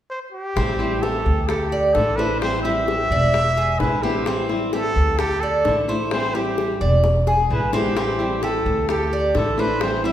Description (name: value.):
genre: latin, Cuban son and guajira.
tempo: 130 BPM.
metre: 4/4.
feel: straight.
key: A minor.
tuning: A4 = 440 Hz.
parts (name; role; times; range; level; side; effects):
breathy trumpet; melody; 0.1-10.1 s; G4 to E5; -23 LUFS; equal; none.
flamenco guitar; accompaniment; 0.6-10.1 s; D3 to E4; -26 LUFS; left 1 dB; none.
Cuban tres; arpeggios; 0.6-10.1 s; C4 to D5; -24 LUFS; right 1 dB; none.
upright bass; bass; 0.6-10.1 s; E1 to D2; -24 LUFS; equal; none.
bongos; percussion; 0.6-10.1 s; none; -29 LUFS; left 3 dB; none.
room: wet recital hall reverb, RT60 1.4 s.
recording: recorded in a church or concert hall.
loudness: -18 LUFS.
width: side -11 dB against mid.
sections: 0.6-10.1 A section.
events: drum fill 7.0-8.0.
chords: 0.0 N.C.; 0.6 Am7; 1.5 Dsus2; 2.4 Am7; 3.3 E7; 4.3 Am7; 5.2 Dsus2; 6.1 Am7; 7.0 E7; 8.0 Am7; 8.9 Dsus2.